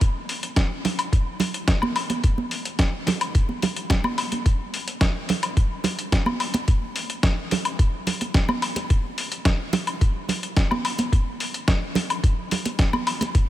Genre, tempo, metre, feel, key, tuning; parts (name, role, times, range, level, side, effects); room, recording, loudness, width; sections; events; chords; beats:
nu-disco; 108 BPM; 4/4; straight
dusty soul sampler-style drum kit; drums; 0.0-13.5 s; hi-hat, snare drum, woodblock; -26 LUFS; left 1 dB
electronic kick drum; drums; 0.0-13.5 s; -20 LUFS; equal
congas; percussion; 0.8-13.3 s; -28 LUFS; right 4 dB
light reverb, digital ambience; -21 LUFS; side -14 dB against mid
0.0-13.5 A section
| 0.01 0.57 1.13 1.68 | 2.24 2.79 3.35 3.90 | 4.46 5.01 5.57 6.13 | 6.68 7.24 7.79 8.35 | 8.90 9.46 10.02 10.57 | 11.13 11.68 12.24 12.79 | 13.35